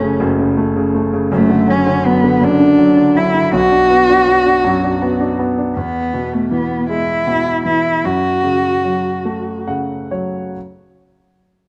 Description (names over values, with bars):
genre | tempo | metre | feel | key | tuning
pop | 54 BPM (dotted quarters) | 6/8 | uneven beats | F# minor | A4 = 440 Hz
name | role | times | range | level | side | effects
dark cello | melody | 0.0-9.7 s | A3 to F#4 | -16 LUFS | equal | slapback echo
clear concert grand piano | accompaniment | 0.0-10.6 s | F#1 to F#5 | -19 LUFS | equal | none
room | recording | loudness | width
moderate echo chamber reverb, RT60 1.9 s | dark, warm production | -15 LUFS | mono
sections
0.0-5.8 A section; 5.8-10.6 B section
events
slowing down 5.8-10.6; grand piano fill 9.3-10.6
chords
0.0 F#m; 1.3 D/F#; 3.5 Bm; 5.8 E; 8.0 F#m